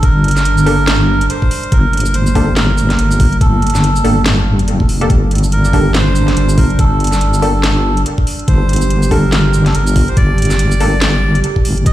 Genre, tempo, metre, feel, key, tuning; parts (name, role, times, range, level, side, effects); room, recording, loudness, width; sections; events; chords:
deep dubstep; 142 BPM; 4/4; swing 59% on 16ths, half-time; G minor; A4 = 440 Hz
melodica; melody; 0.0-11.9 s; A4 to Eb5; -19 LUFS; right 2 dB; dub echo
dark analog pad; sustained chords; 0.0-11.9 s; G3 to G4; -21 LUFS; right 2 dB; wide subtle chorus
deep soft wobble bass; bass; 0.0-11.9 s; F1 to G1; -13 LUFS; equal; chorus
electronic kick drum; drums; 0.0-11.9 s; -12 LUFS; equal
garage drum kit; drums; 0.0-11.9 s; hi-hat, shaker, snare drum; -20 LUFS; equal
filtered dub chord stab; stabs; 0.7-10.9 s; Bb3 to A4; -23 LUFS; left 1 dB; chorus, dub echo
digital ambience; played on a big sound system in a bare room, large studio reverb; -10 LUFS; side -14 dB against mid
0.0-11.9 A section
0.0 Gmadd9